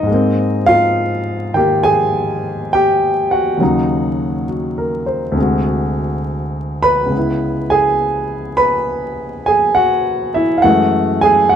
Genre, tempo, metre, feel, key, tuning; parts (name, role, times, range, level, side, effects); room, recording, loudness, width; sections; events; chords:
solo jazz; 68 BPM; 4/4; swing 67% on 8ths; A4 = 440 Hz
warm grand piano; solo; 0.0-11.6 s; C#2 to B5; -13 LUFS; equal
light reverb; close, detailed microphones, vinyl crackle; -13 LUFS; side -8 dB against mid
0.0-11.6 A section
0.1 G#maj9; 3.6 D#m7; 5.4 D7#11; 7.1 C#m7; 10.6 F#m9